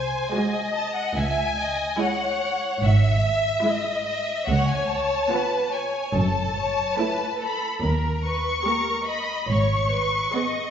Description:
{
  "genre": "classical, slow romantic movement for string orchestra",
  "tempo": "72 BPM",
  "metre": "4/4",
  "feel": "rubato",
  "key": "C# minor",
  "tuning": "A4 = 440 Hz",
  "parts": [
    { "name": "rich studio violin section", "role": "melody", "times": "0.0-10.7 s", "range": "E5 to C#6", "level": "-26 LUFS", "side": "left 3 dB", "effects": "none" },
    { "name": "rich studio violin section", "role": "second line", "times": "0.0-10.7 s", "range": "A4 to E5", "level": "-26 LUFS", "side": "equal", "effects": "none" },
    { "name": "clear studio cello section", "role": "bass", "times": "0.0-10.2 s", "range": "B#1 to G#2", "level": "-26 LUFS", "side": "right 1 dB", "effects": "none" },
    { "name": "rich studio double bass section", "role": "bass", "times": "0.0-10.2 s", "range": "F#1 to D#2", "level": "-28 LUFS", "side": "right 2 dB", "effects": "none" },
    { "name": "rich studio viola section", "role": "accompaniment", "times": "0.3-10.7 s", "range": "G#3 to G#4", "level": "-29 LUFS", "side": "right 3 dB", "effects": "none" }
  ],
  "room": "wet recital hall reverb, RT60 1.6 s",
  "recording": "heard from further back in the room, nothing above 7.8 kHz",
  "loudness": "-21 LUFS",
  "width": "side -8 dB against mid",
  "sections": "0.0-10.7 A section",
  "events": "none",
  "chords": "0.0 G#7/B#; 1.2 C#m; 4.5 C#7; 6.2 F#m7; 7.8 D#7; 9.5 G#m"
}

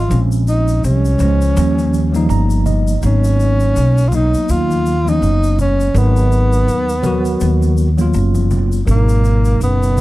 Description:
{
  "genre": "hip hop, jazz-hop",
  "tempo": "82 BPM",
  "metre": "4/4",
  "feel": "swing 58% on 16ths",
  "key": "G# dorian",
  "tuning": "A4 = 440 Hz",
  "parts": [
    { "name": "breathy tenor saxophone", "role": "melody", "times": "0.0-10.0 s", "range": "A#3 to E#4", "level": "-19 LUFS", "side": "right 1 dB", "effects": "none" },
    { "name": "tine electric piano", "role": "accompaniment", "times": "0.0-10.0 s", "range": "B2 to A#5", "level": "-20 LUFS", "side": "right 1 dB", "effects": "medium stereo tremolo" },
    { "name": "upright bass", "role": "bass", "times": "0.0-10.0 s", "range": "F#1 to D#2", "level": "-14 LUFS", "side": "equal", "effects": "none" },
    { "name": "tube shaker and congas", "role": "percussion", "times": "0.1-10.0 s", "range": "none", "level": "-27 LUFS", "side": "left 2 dB", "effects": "none" }
  ],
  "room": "small room ambience",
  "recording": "none",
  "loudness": "-12 LUFS",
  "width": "side -17 dB against mid",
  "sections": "0.0-8.9 A section; 8.9-10.0 B section",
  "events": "tine electric piano fill 1.9-3.0",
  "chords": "0.1 A#m7; 1.6 D#7; 3.0 G#m7"
}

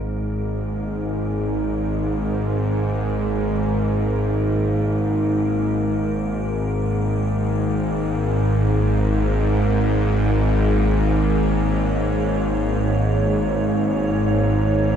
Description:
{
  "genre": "dark ambient drone",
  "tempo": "free time",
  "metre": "none",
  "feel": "none",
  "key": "unclear",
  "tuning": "A4 = 442 Hz",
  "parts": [
    { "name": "bowed-like drone", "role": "drone", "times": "0.0-15.0 s", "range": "G#1 to G#2", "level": "-19 LUFS", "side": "equal", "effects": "built-in reverb" },
    { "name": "icy glass pad", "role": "texture", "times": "0.0-15.0 s", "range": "A#3 to C#5", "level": "-30 LUFS", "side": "right 1 dB", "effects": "chorus, built-in reverb" }
  ],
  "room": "moderate plate reverb, RT60 2.8 s",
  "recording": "dreamy mix soaked in reverb",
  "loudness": "-18 LUFS",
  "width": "side -8 dB against mid",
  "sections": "0.0-15.0 A section",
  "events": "fade-in on ambient pad 0.0-15.0",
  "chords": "0.0 G#sus2"
}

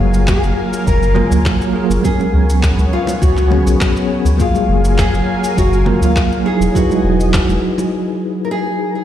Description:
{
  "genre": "sunset chillout",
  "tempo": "102 BPM",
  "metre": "4/4",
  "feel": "straight",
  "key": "F# major",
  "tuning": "A4 = 440 Hz",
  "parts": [
    { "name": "nylon-string guitar", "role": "melody", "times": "0.0-9.0 s", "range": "E#4 to A#4", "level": "-21 LUFS", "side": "left 2 dB", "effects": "digital delay" },
    { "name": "bell-like tine electric piano", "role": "accompaniment", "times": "0.0-9.0 s", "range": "F#3 to B4", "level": "-18 LUFS", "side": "moving between left 6 dB and right 5 dB", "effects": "fast stereo tremolo, auto-pan" },
    { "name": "lush unison pad", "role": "sustained chords", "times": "0.0-7.9 s", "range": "F#3 to G#5", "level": "-24 LUFS", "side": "equal", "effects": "chorus, phaser" },
    { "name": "warm sub bass", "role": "bass", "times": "0.0-7.6 s", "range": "E1 to C#2", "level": "-14 LUFS", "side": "equal", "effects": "tube saturation" },
    { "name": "electronic shaker and handclaps", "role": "drums", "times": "0.1-7.9 s", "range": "none", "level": "-25 LUFS", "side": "left 1 dB", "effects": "none" },
    { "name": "electronic kick drum", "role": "drums", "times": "0.3-7.5 s", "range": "none", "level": "-17 LUFS", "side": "equal", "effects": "none" },
    { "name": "congas", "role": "percussion", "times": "1.2-7.9 s", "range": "none", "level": "-25 LUFS", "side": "left 3 dB", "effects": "none" }
  ],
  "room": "light reverb",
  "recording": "played on a big sound system in a bare room, stone room reverb",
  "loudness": "-12 LUFS",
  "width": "side -11 dB against mid",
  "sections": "0.0-9.0 A section",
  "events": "break 7.9-9.0",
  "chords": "0.0 F#maj9; 2.0 C#7sus4; 4.4 F#maj9; 6.5 Emaj9"
}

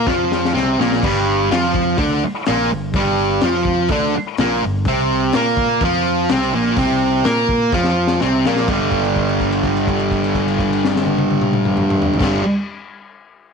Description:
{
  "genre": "garage rock duo or trio",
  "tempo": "126 BPM",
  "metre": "4/4",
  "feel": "straight",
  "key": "unclear",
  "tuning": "A4 = 440 Hz",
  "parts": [
    { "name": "fuzz guitar", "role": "riff", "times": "0.0-12.4 s", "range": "G2 to Bb4", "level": "-16 LUFS", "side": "right 1 dB", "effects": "distortion" },
    { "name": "overdriven picked electric bass", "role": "bass", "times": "0.0-12.4 s", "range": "G1 to Bb2", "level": "-24 LUFS", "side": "right 1 dB", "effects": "none" },
    { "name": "crunchy breakbeat drum kit", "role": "drums", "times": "0.1-12.3 s", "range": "crash cymbal, hi-hat, kick drum, snare drum, toms", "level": "-22 LUFS", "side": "left 4 dB", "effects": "none" }
  ],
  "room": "light reverb, studio reverb",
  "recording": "1960s-style stereo",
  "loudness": "-15 LUFS",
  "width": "side -5 dB against mid",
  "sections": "0.0-1.0 A section; 1.0-8.7 A section; 8.7-12.5 B section",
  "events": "drum fill 0.1-1.0, 7.7-8.7; held note 8.7-12.2",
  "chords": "0.0 Bbsus2; 1.0 G5; 4.9 Bbsus2; 8.7 G5"
}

